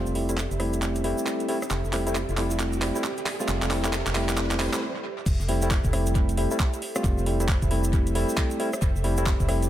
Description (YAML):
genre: UK garage, two-step garage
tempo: 135 BPM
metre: 4/4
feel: swing 62% on 16ths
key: F major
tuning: A4 = 441 Hz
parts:
  - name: airy breathy pad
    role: sustained chords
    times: 0.0-9.7 s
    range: G4 to E5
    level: -38 LUFS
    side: right 2 dB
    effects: chorus, sidechain pumping
  - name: barky tine electric piano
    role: stabs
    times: 0.0-9.7 s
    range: G3 to F4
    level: -28 LUFS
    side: equal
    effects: overdrive, wide subtle chorus, low-pass filter, tape echo
  - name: organ-like FM bass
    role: bass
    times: 0.0-9.7 s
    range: F1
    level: -27 LUFS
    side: equal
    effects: none
  - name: riser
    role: sound effects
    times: 1.0-4.8 s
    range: none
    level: -37 LUFS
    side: right 1 dB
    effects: none
  - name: egg shaker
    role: percussion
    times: 0.1-9.7 s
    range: none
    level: -40 LUFS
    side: right 2 dB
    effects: none
  - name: garage drum kit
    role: drums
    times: 0.2-9.7 s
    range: crash cymbal, handclaps, hi-hat, rim click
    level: -31 LUFS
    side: right 1 dB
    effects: analog delay
  - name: electronic kick drum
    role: drums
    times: 5.3-9.5 s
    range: none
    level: -24 LUFS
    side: equal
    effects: none
room: light reverb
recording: echo-heavy mix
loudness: -23 LUFS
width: side -12 dB against mid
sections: 0.0-5.3 A section; 5.3-9.7 B section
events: build-up 0.0-5.3; drum fill 0.0-4.8; break 4.8-5.3; drop 5.3-9.7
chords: 0.0 Fmaj9; 5.0 Am7/G; 5.3 Fmaj9